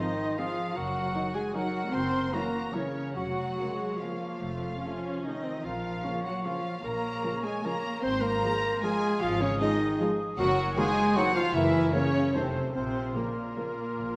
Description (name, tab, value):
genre	classical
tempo	136-166 BPM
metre	3/4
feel	rubato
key	Bb minor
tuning	A4 = 440 Hz
part	muted studio violin section	melody	0.0-14.2 s	Bb4 to C6	-41 LUFS	equal	none
part	concert flute	second line	0.0-14.2 s	Bb4 to C6	-38 LUFS	equal	none
part	mellow cor anglais	second line	0.0-14.2 s	F4 to Db5	-40 LUFS	equal	none
part	muted studio violin section	second line	0.0-14.2 s	Bb3 to C5	-41 LUFS	equal	none
part	warm clarinet	second line	0.0-14.2 s	Bb3 to C5	-36 LUFS	equal	none
part	muted studio viola section	accompaniment	0.0-13.7 s	Eb3 to Fb4	-40 LUFS	equal	none
part	warm French horn section	sustained chords	0.0-14.2 s	Bb2 to C4	-38 LUFS	equal	none
part	warm trombone section	sustained chords	0.0-13.7 s	C3 to Eb4	-42 LUFS	equal	none
part	muted studio cello section	bass	0.0-14.2 s	Bb2 to C4	-37 LUFS	equal	none
part	muted studio double bass section	bass	0.8-14.2 s	F1 to Bb1	-38 LUFS	equal	none
room	wet scoring stage reverb, RT60 1.6 s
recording	none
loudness	-29 LUFS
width	mono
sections	0.0-14.2 A section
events	none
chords	0.0 Fm; 0.8 Ebm/Gb; 1.9 Gb7; 3.2 Bbm/F; 4.4 F; 5.6 Bbm; 8.0 Fm/Ab; 10.4 Ebm/Gb; 11.5 Gb7; 12.3 F7; 12.7 Bbm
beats	0.38 | 0.76 1.14 1.55 | 1.93 2.33 2.74 | 3.16 3.57 4.00 | 4.40 4.82 5.25 | 5.64 6.04 6.46 | 6.85 7.24 7.65 | 8.04 8.43 8.84 | 9.22 9.61 10.01 | 10.38 10.77 11.17 | 11.54 11.93 12.35 | 12.75 13.15 13.57 | 13.97